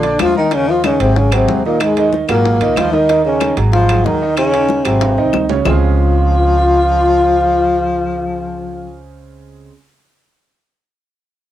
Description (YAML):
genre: Afro-Cuban jazz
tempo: 187 BPM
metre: 4/4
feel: straight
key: Db major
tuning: A4 = 441 Hz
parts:
  - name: growling trombone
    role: melody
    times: 0.0-9.0 s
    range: Ab3 to F4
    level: -16 LUFS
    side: equal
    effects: none
  - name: warm tenor saxophone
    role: second line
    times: 0.0-9.0 s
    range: Ab2 to F3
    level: -19 LUFS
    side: left 7 dB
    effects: cassette tape
  - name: warm concert grand piano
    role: accompaniment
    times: 0.0-9.7 s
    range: Db3 to D6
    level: -20 LUFS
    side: right 7 dB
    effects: cassette tape
  - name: upright bass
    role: bass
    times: 0.0-9.7 s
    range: Ab1 to Eb2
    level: -18 LUFS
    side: equal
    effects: none
  - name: bongos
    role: percussion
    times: 0.0-5.7 s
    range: none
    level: -24 LUFS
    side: left 9 dB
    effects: none
  - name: congas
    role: percussion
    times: 0.0-5.7 s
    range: none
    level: -26 LUFS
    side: left 8 dB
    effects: none
  - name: timbales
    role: percussion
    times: 0.0-5.7 s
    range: none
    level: -25 LUFS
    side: right 9 dB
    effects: none
  - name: claves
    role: percussion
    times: 0.2-5.7 s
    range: none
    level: -24 LUFS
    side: left 7 dB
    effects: none
room: wet booth ambience, RT60 0.2 s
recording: home recording on cassette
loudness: -11 LUFS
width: side -12 dB against mid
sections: 0.5-5.7 A section; 5.7-8.2 B section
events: drum fill 5.0-5.7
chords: 0.0 Bb; 0.5 Ab7; 2.4 Absus2; 3.1 Ab5; 5.0 Ab7; 5.7 Dbmaj7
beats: 0.20 | 0.52 0.84 1.16 1.48 | 1.80 2.12 2.44 2.77 | 3.09 3.41 3.73 4.05 | 4.37 4.69 5.02 5.34 | 5.66 5.98 6.30 6.62 | 6.95 7.27 7.59 7.91